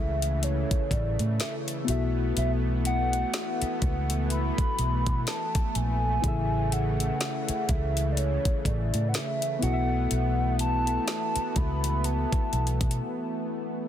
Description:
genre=contemporary R&B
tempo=62 BPM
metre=4/4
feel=swing 58% on 16ths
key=unclear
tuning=A4 = 441 Hz
part: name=hollow clarinet-like synth lead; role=melody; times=0.0-13.5 s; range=C#5 to B5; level=-32 LUFS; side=equal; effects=chorus, tape echo
part: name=muted felt-like synth keys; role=accompaniment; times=0.0-13.9 s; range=C#3 to E5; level=-34 LUFS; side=left 4 dB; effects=chorus
part: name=lush unison pad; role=sustained chords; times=0.0-13.9 s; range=C#3 to B3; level=-34 LUFS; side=right 1 dB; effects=chorus
part: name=vintage muted fingered electric bass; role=bass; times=0.0-13.0 s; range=A1 to B2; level=-27 LUFS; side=equal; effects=none
part: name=smooth R&B drum kit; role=drums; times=0.2-13.0 s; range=hi-hat, kick drum, snare drum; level=-29 LUFS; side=equal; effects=none
room=little or no reverb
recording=dense, heavily limited modern master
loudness=-25 LUFS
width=side -10 dB against mid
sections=0.0-13.9 A section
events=break 13.0-13.9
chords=0.0 Amaj7; 1.9 B7sus4; 6.2 Amaj7; 9.6 B7sus4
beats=0.43 1.40 | 2.37 3.33 4.30 5.27 | 6.24 7.20 8.17 9.14 | 10.11 11.07 12.04 13.01

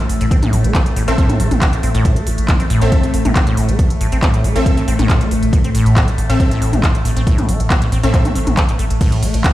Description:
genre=driving peak-time techno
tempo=138 BPM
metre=4/4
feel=straight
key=A minor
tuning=A4 = 440 Hz
part: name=acid bass, saw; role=riff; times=0.0-9.4 s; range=A2 to C4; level=-20 LUFS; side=equal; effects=wide subtle chorus, sidechain pumping, tape echo
part: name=saturated sub bass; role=bass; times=0.0-9.4 s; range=A1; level=-19 LUFS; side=equal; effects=sidechain pumping, low-pass filter
part: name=overtone-sweeping drone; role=drone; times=0.0-9.5 s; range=A2 to A3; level=-22 LUFS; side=left 2 dB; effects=chorus, built-in reverb, phaser, sidechain pumping
part: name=techno drum kit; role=drums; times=0.1-9.5 s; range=crash cymbal, handclaps, hi-hat, ride cymbal, toms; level=-21 LUFS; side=equal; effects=sidechain pumping on hats, sidechain pumping on cymbals, sidechain pumping on toms
part: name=electronic kick drum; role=drums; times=0.3-9.5 s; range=none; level=-15 LUFS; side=equal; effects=overdrive
part: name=rave stab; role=stabs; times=1.1-8.2 s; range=C4 to E5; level=-22 LUFS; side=left 1 dB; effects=chorus, built-in reverb, sidechain pumping, tape echo
room=light reverb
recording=played on a big sound system in a bare room, stone room reverb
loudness=-12 LUFS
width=side -15 dB against mid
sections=0.0-9.5 A section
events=none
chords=0.0 Am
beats=| 0.31 0.75 1.18 1.62 | 2.05 2.49 2.92 3.36 | 3.79 4.23 4.66 5.09 | 5.53 5.96 6.40 6.83 | 7.27 7.70 8.14 8.57 | 9.01 9.44

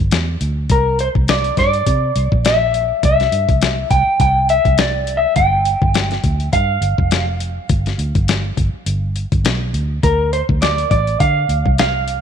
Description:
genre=straight-eighth soul blues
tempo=103 BPM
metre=4/4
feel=swing 56% on 16ths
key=unclear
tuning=A4 = 440 Hz
part: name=vintage muted fingered electric bass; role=bass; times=0.0-12.2 s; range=F1 to D3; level=-19 LUFS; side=right 1 dB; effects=none
part: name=dusty soul sampler-style drum kit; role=drums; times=0.1-12.2 s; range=hi-hat, kick drum, snare drum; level=-18 LUFS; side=left 2 dB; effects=overdrive
part: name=electric guitar through a small old amp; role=melody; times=0.7-12.2 s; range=Bb4 to G5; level=-17 LUFS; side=equal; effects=vibrato effect
room=light reverb, digital ambience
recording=1960s-style stereo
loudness=-14 LUFS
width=side -8 dB against mid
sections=0.0-12.2 A section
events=none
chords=0.0 G5; 0.7 C9; 5.4 G7(no3); 10.0 D5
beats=0.11 | 0.69 1.28 1.86 2.44 | 3.03 3.61 4.20 4.78 | 5.36 5.95 6.53 7.11 | 7.70 8.28 8.87 9.45 | 10.03 10.62 11.20 11.79

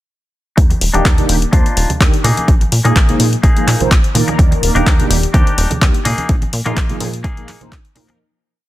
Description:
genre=filtered disco house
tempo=126 BPM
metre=4/4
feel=swing 54% on 16ths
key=Eb major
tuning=A4 = 440 Hz
part: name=semi-hollow electric guitar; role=riff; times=0.6-8.1 s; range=Bb3 to Bb4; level=-21 LUFS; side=left 2 dB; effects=spring reverb, sidechain pumping, low-pass filter
part: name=plucky analog bass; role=bass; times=0.6-8.0 s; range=Eb1 to Bb2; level=-17 LUFS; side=equal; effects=tube saturation, sidechain pumping, low-pass filter
part: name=electronic kick drum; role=drums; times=0.6-7.8 s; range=none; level=-12 LUFS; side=equal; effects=overdrive
part: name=punchy analog drum machine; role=drums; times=0.6-8.2 s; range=handclaps, hi-hat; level=-20 LUFS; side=left 2 dB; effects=overdrive, sidechain pumping on hats
part: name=tambourine and congas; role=percussion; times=0.6-8.2 s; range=none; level=-25 LUFS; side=right 3 dB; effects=sidechain pumping on perc, low-pass filter on perc
part: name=mellow synth brass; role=accompaniment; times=0.9-8.2 s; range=Eb3 to D5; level=-20 LUFS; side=right 1 dB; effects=chorus, phaser, sidechain pumping, low-pass filter
room=little or no reverb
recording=dense, heavily limited modern master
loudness=-11 LUFS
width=side -15 dB against mid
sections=0.6-8.2 groove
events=filter sweep 0.6-8.2; fade-out 5.7-8.2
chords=0.6 Ebmaj7; 2.2 Bb7sus4; 4.4 Ebmaj7; 6.1 Bb7sus4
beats=| 0.58 1.05 1.53 2.01 | 2.48 2.96 3.44 3.91 | 4.39 4.87 5.34 5.82 | 6.29 6.77 7.25 7.72

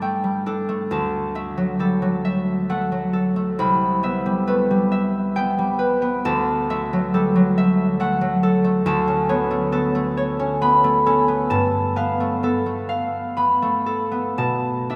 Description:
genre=classical, solo harp piece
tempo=38-47 BPM (dotted quarters)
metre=6/8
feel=rubato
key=A mixolydian from 6.2 s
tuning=A4 = 440 Hz
part: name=concert harp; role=solo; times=0.0-15.0 s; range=C2 to B5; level=-21 LUFS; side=equal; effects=none
room=wet cathedral reverb, RT60 5.4 s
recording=in a vast, echoing space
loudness=-21 LUFS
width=mono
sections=0.0-15.0 A section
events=none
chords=0.0 Gsus2; 0.9 Dadd9; 3.6 Cmaj7; 6.2 Dadd9; 8.9 Aadd9/D; 11.5 G9; 14.4 B7(no3)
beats=| 0.91 2.25 | 3.60 4.92 | 6.25 7.57 | 8.87 10.19 | 11.52 12.90 | 14.38

